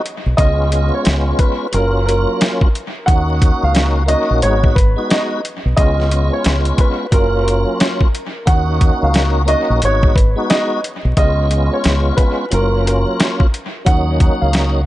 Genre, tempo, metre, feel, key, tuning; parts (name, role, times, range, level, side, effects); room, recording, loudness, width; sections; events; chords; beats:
hip hop, boom-bap hip-hop; 89 BPM; 4/4; swing 62% on 16ths; Eb minor; A4 = 440 Hz
tonewheel organ; accompaniment; 0.0-14.8 s; Gb3 to Gb4; -20 LUFS; equal; chorus vibrato, slow rotary speaker, high-pass filter, low-pass filter
boom bap sampler-style drum kit; drums; 0.1-14.7 s; hi-hat, kick drum, snare drum; -15 LUFS; equal
deep dub fingered electric bass; bass; 0.3-14.9 s; Gb1 to Eb2; -16 LUFS; equal
warm upright piano; melody; 0.4-14.8 s; Bb4 to Gb5; -20 LUFS; right 1 dB; high-pass filter, low-pass filter, dub echo
light reverb; echo-heavy mix, vinyl crackle, nothing above 10.4 kHz; -13 LUFS; side -15 dB against mid
0.0-14.9 A section
0.4 Db7; 1.7 Gbmaj7; 3.1 Ebm7; 4.4 Abm7; 5.8 Db7; 7.1 Gbmaj7; 8.5 Ebm7; 9.8 Abm7; 11.2 Db7; 12.5 Gbmaj7; 13.9 Ebm7
| 0.38 1.06 1.73 2.41 | 3.08 3.75 4.43 5.10 | 5.78 6.45 7.12 7.80 | 8.47 9.15 9.82 10.50 | 11.17 11.84 12.52 13.19 | 13.87 14.54